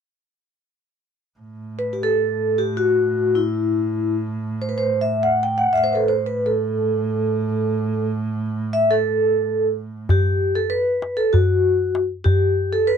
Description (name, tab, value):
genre	Turkish makam ensemble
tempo	free time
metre	none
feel	none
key	A makam nikriz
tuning	A4 = 437 Hz
part	rich double bass	drone	1.4-10.2 s	A2	-26 LUFS	right 3 dB	stereo widening
part	vibraphone with medium mallets	melody	1.8-13.0 s	E4 to G5	-19 LUFS	equal	none
part	darbuka	percussion	10.1-13.0 s	none	-20 LUFS	left 1 dB	none
room	light reverb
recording	dry, close 1970s-style studio recording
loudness	-18 LUFS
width	side -7 dB against mid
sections	1.4-10.1 A section; 10.1-13.0 B section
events	none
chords	none